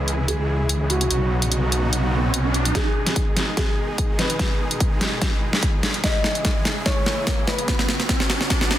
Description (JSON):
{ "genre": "heavy wobble dubstep", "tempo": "146 BPM", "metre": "4/4", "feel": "swing 54% on 16ths, half-time", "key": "G# minor", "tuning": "A4 = 439 Hz", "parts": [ { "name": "felt-muted upright piano", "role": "melody", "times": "0.0-8.8 s", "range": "F#4 to D#5", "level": "-29 LUFS", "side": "equal", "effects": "vintage 12-bit sampler grit, tape echo" }, { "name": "supersaw chords", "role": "sustained chords", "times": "0.0-8.8 s", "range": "B2 to G#4", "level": "-28 LUFS", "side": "equal", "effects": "sidechain pumping" }, { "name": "wobble bass", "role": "bass", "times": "0.0-2.7 s", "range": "B1 to C#2", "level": "-22 LUFS", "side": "equal", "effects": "chorus, overdrive" }, { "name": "riser", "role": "sound effects", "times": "0.5-8.8 s", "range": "none", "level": "-31 LUFS", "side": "right 2 dB", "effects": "none" }, { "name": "dubstep drum kit", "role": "drums", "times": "0.1-8.8 s", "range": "hi-hat, snare drum", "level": "-23 LUFS", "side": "equal", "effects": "overdrive" }, { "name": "electronic kick drum", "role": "drums", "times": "2.7-8.6 s", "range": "none", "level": "-23 LUFS", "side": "equal", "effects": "overdrive" } ], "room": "light reverb", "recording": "dense, heavily limited modern master", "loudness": "-19 LUFS", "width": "side -12 dB against mid", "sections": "0.0-2.7 A section; 2.7-8.8 B section", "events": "riser 0.5-2.7, 2.7-8.8; build-up 2.7-8.8; drum fill 2.7-8.8", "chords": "0.0 C#m; 1.1 Badd9; 2.7 G#m; 6.0 C#m; 7.7 Badd9", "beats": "0.28 0.69 | 1.10 1.52 1.93 2.34 | 2.75 3.16 3.57 3.98 | 4.39 4.80 5.21 5.63 | 6.04 6.45 6.86 7.27 | 7.68 8.09 8.50" }